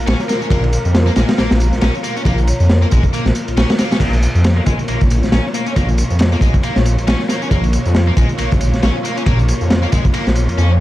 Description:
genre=breakbeat, breaks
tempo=137 BPM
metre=4/4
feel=swing 57% on 16ths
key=Bb minor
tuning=A4 = 439 Hz
part: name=lush unison pad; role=sustained chords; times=0.0-10.8 s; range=Bb3 to Db5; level=-24 LUFS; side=equal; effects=chorus, phaser, sidechain pumping
part: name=detuned saw bass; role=bass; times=0.0-10.8 s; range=Bb1 to F2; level=-15 LUFS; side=equal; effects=tube saturation
part: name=high-gain distorted guitar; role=riff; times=0.1-10.7 s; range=Ab3 to Db4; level=-24 LUFS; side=left 1 dB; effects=distortion, tube saturation, low-pass filter, digital delay
part: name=crunchy breakbeat drum kit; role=drums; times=0.1-10.6 s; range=crash cymbal, kick drum, ride cymbal, snare drum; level=-16 LUFS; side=equal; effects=none
part: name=tambourine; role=drums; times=0.1-10.7 s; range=none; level=-33 LUFS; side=right 1 dB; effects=none
part: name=vibraphone with medium mallets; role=melody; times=0.3-2.7 s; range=Bb4 to Db5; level=-30 LUFS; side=left 1 dB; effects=AM radio sound, digital delay
room=studio reverb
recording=dark, warm production, vinyl crackle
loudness=-12 LUFS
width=side -15 dB against mid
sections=0.0-4.0 A section; 4.0-10.8 A section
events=none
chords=0.0 Bbm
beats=0.07 | 0.51 0.95 1.38 1.82 | 2.26 2.70 3.14 3.57 | 4.01 4.45 4.89 5.33 | 5.76 6.20 6.64 7.08 | 7.51 7.95 8.39 8.83 | 9.27 9.71 10.14 10.58

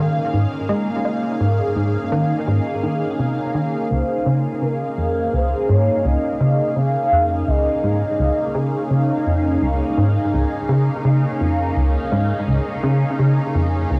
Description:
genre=ambient, sequencer-driven space music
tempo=84 BPM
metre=4/4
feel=straight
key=unclear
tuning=A4 = 436 Hz
part: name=lush unison pad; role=sustained chords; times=0.0-14.0 s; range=Bb3 to F5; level=-24 LUFS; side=equal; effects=chorus, phaser, cassette tape
part: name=plucky analog bass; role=riff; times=0.0-14.0 s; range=Db2 to Ab3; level=-22 LUFS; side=equal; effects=subtle chorus, cassette tape, tape echo
part: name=expressive portamento lead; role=melody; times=3.9-9.3 s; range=Bb4 to F5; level=-25 LUFS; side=equal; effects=subtle chorus, cassette tape, tape echo
room=wet booth ambience, RT60 0.3 s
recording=home recording on cassette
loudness=-19 LUFS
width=mono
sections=0.0-14.0 A section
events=none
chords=0.0 Absus2; 3.9 Dbadd9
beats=0.33 | 1.05 1.76 2.48 3.19 | 3.91 4.62 5.33 6.05 | 6.76 7.48 8.19 8.91 | 9.62 10.33 11.05 11.76 | 12.48 13.19 13.91

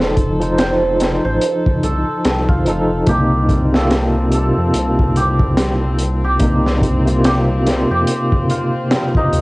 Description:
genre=trip hop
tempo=72 BPM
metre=4/4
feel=swing 59% on 16ths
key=C dorian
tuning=A4 = 437 Hz
part: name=cimbalom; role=melody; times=0.0-9.4 s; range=Eb4 to D5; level=-22 LUFS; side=right 1 dB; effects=tape echo
part: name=bright tine electric piano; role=accompaniment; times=0.0-9.4 s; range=C3 to C5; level=-18 LUFS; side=equal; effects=tremolo
part: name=dark chamber string section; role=sustained chords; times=0.0-9.4 s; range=C4 to A4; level=-29 LUFS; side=left 2 dB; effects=none
part: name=dark detuned saw bass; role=bass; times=0.0-9.4 s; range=F1 to F2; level=-19 LUFS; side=equal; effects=none
part: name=crunchy breakbeat drum kit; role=drums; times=0.0-9.4 s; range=hi-hat, kick drum, snare drum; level=-18 LUFS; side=equal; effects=cassette tape
part: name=Celtic harp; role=arpeggios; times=3.1-9.4 s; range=Bb3 to G4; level=-27 LUFS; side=equal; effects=none
room=little or no reverb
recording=home recording on cassette, nothing above 10.5 kHz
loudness=-13 LUFS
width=side -22 dB against mid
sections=0.0-9.4 A section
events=none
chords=0.0 F7; 3.1 Cm7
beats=0.57 1.41 2.24 | 3.08 3.91 4.74 5.58 | 6.41 7.24 8.07 8.91

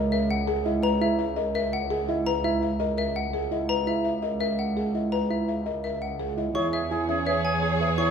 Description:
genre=classical, minimalist pattern music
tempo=168 BPM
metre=4/4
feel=straight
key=C# dorian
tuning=A4 = 444 Hz
part: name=buzzing marimba with medium mallets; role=melody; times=0.0-8.1 s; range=G#4 to G#5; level=-30 LUFS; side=left 10 dB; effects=none
part: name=dark grand piano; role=arpeggios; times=0.0-8.1 s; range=C#4 to C#5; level=-30 LUFS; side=right 6 dB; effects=none
part: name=clear studio double bass section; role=bass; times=0.0-8.1 s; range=C#2 to E2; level=-28 LUFS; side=right 2 dB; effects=none
part: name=xylophone with plastic mallets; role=arpeggios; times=0.1-8.1 s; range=E5 to C#6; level=-31 LUFS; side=left 2 dB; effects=none
part: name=rich studio string section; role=sustained chords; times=6.5-8.1 s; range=G#4 to C#5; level=-30 LUFS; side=left 1 dB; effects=none
part: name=warm oboe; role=second line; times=6.6-8.1 s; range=G#4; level=-29 LUFS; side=right 2 dB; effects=none
room=wet recital hall reverb, RT60 1.8 s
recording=minimal, uncompressed stereo recording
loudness=-24 LUFS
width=side -7 dB against mid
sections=0.0-6.5 A section; 6.5-8.1 B section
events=none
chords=0.0 C#madd9; 6.5 E6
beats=0.12 0.48 | 0.83 1.19 1.55 1.91 | 2.26 2.62 2.98 3.33 | 3.69 4.05 4.41 4.76 | 5.12 5.48 5.83 6.19 | 6.55 6.91 7.26 7.62 | 7.98

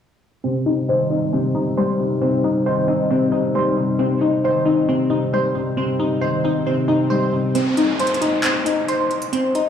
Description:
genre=hip hop, trap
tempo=135 BPM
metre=4/4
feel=half-time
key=C minor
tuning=A4 = 440 Hz
part: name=felt-muted upright piano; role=accompaniment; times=0.4-7.6 s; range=C3 to C4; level=-21 LUFS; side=left 2 dB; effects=low-pass filter
part: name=warbly tape-like pad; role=sustained chords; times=1.0-7.5 s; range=G3 to C5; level=-26 LUFS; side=left 2 dB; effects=chorus, built-in reverb, low-pass filter
part: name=glassy wavetable pluck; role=arpeggios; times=0.4-9.7 s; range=C4 to C5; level=-20 LUFS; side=equal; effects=chorus, phaser, low-pass filter, tape echo
part: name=swell and downlifter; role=sound effects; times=6.1-9.7 s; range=none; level=-28 LUFS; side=equal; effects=none
part: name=trap drum kit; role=drums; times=7.6-9.7 s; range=handclaps, hi-hat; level=-26 LUFS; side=equal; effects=none
room=moderate lush hall reverb, RT60 1.8 s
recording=played on a big sound system in a bare room, stone room reverb, studio reverb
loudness=-17 LUFS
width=side -8 dB against mid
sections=0.4-7.6 A section; 7.6-9.7 B section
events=filter sweep 0.4-7.6; swell 6.1-7.6; kick muted 7.6-9.7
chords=0.4 Cm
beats=| 0.44 0.88 1.33 1.77 | 2.22 2.66 3.11 3.55 | 4.00 4.44 4.88 5.33 | 5.77 6.22 6.66 7.11 | 7.55 8.00 8.44 8.88 | 9.33

